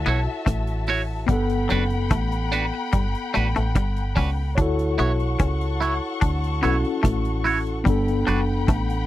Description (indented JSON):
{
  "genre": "lovers rock reggae",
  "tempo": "73 BPM",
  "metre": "4/4",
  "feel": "straight",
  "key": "D major",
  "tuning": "A4 = 439 Hz",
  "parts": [
    { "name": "muted studio string section", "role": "second line", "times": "0.0-9.1 s", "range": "F#4 to C#6", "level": "-31 LUFS", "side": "left 4 dB", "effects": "none" },
    { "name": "mellow tine electric piano", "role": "accompaniment", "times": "0.0-9.1 s", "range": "B3 to F#5", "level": "-27 LUFS", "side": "left 2 dB", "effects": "medium stereo tremolo" },
    { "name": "deep dub fingered electric bass", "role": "bass", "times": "0.0-9.1 s", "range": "F#1 to D2", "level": "-24 LUFS", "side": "equal", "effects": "none" },
    { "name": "twangy electric guitar", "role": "riff", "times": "0.1-8.9 s", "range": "F#3 to D4", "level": "-29 LUFS", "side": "left 6 dB", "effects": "none" },
    { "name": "twangy electric guitar", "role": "stabs", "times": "0.1-8.4 s", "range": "D4 to C#5", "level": "-24 LUFS", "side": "right 4 dB", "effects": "phaser" },
    { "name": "deep reggae drum kit", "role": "drums", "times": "0.1-9.1 s", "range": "hi-hat, kick drum, rim click", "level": "-22 LUFS", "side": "equal", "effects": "none" }
  ],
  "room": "little or no reverb",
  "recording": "dry, close 1970s-style studio recording",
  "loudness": "-20 LUFS",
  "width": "side -14 dB against mid",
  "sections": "0.0-9.1 A section",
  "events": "none",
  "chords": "0.0 Dmaj9 (rootless); 1.3 Gmaj7; 4.6 Dmaj9; 7.9 Gmaj7",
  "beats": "0.47 | 1.29 2.11 2.93 3.75 | 4.57 5.39 6.22 7.04 | 7.86 8.68"
}